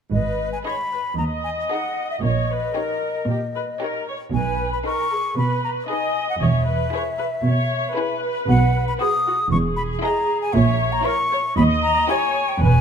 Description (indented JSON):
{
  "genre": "cinematic, playful, whimsical film cue",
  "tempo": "115 BPM",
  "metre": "4/4",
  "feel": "straight",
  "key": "G# minor",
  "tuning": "A4 = 440 Hz",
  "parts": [
    { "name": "mellow silver concert flute", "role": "second line", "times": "0.1-12.8 s", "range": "D#5 to D#6", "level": "-24 LUFS", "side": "left 3 dB", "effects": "none" },
    { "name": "muted studio viola section", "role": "accompaniment", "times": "0.1-12.8 s", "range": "F#4 to D#5", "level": "-26 LUFS", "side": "equal", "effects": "none" },
    { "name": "muted studio cello section", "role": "bass", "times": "0.1-12.8 s", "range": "D#2 to B2", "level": "-23 LUFS", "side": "right 1 dB", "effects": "none" },
    { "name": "muted studio double bass section", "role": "bass", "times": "0.1-12.8 s", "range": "E1 to D#2", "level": "-21 LUFS", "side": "right 3 dB", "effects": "none" },
    { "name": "muted studio violin section", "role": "melody", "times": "0.7-12.5 s", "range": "B4 to D#5", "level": "-34 LUFS", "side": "left 3 dB", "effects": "none" },
    { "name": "muted studio violin section", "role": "second line", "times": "0.7-12.5 s", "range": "D#4 to A#4", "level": "-31 LUFS", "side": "left 2 dB", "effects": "none" }
  ],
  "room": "light reverb",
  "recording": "none",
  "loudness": "-19 LUFS",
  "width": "side -7 dB against mid",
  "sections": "0.1-12.8 A section",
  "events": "none",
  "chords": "0.1 G#m; 2.2 D#7/A#; 4.3 G#m/B; 6.4 E; 8.5 B; 9.5 Emaj7; 10.5 A#dim; 11.6 D#7b9"
}